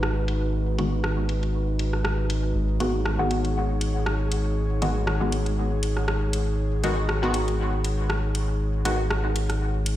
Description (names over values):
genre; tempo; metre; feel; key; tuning
dub techno; 119 BPM; 4/4; swing 55% on 16ths; G# minor; A4 = 441 Hz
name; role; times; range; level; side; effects
airy breathy pad; sustained chords; 0.0-10.0 s; G#3 to C#5; -31 LUFS; right 1 dB; chorus
warm sub bass; bass; 0.0-10.0 s; G#1; -25 LUFS; equal; none
deep house drum kit; drums; 0.0-10.0 s; hi-hat, rim click; -31 LUFS; equal; overdrive, low-pass filter on hats, small room ambience, low-pass filter on snare, dub echo
filtered dub chord stab; stabs; 0.8-9.0 s; D#3 to F#4; -29 LUFS; equal; chorus, phaser, cassette tape, dub echo
room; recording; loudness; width
light reverb, digital ambience; played on a big sound system in a bare room, large studio reverb; -22 LUFS; side -13 dB against mid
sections
0.0-10.0 A section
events
none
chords
0.0 G#m7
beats
0.03 | 0.53 1.04 1.54 2.05 | 2.55 3.06 3.56 4.06 | 4.57 5.07 5.58 6.08 | 6.58 7.09 7.59 8.10 | 8.60 9.11 9.61